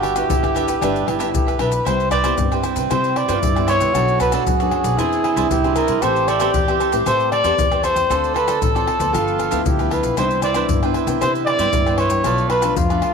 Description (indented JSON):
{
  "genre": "samba and choro",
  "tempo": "115 BPM",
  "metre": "4/4",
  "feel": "straight",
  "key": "C major",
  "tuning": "A4 = 438 Hz",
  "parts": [
    { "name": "dark trumpet", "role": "melody", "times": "0.0-13.1 s", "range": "F4 to D5", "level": "-20 LUFS", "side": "left 1 dB", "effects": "none" },
    { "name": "breathy tenor saxophone", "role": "second line", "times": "0.0-13.0 s", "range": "C4 to A4", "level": "-23 LUFS", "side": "right 8 dB", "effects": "none" },
    { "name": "cavaquinho", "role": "accompaniment", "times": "0.0-13.1 s", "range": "D4 to G5", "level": "-26 LUFS", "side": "right 10 dB", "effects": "none" },
    { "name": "nylon-string guitar", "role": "accompaniment", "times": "0.0-13.1 s", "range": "F#2 to B4", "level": "-26 LUFS", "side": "left 12 dB", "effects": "none" },
    { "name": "upright bass", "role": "bass", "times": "0.0-13.0 s", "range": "G1 to C3", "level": "-25 LUFS", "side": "equal", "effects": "none" },
    { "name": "pandeiro, tamborim, maracas and surdo", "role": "percussion", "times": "0.0-13.1 s", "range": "none", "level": "-24 LUFS", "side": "left 4 dB", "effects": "none" }
  ],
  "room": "moderate plate reverb, RT60 2.9 s",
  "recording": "1960s-style stereo with parts hard left and right",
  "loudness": "-16 LUFS",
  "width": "side -6 dB against mid",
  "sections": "0.0-1.9 A section; 1.9-13.1 B section",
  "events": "none",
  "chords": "0.0 G6; 1.9 Cmaj7; 3.9 Bm7; 5.0 Eaug7; 6.0 Am9; 8.1 Dm7; 9.1 G13; 10.2 Cmaj9; 12.3 Bm7b5",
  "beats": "0.30 0.82 1.34 | 1.86 2.38 2.90 3.42 | 3.94 4.46 4.99 5.51 | 6.03 6.54 7.07 7.58 | 8.10 8.62 9.14 9.66 | 10.18 10.70 11.22 11.74 | 12.26 12.77"
}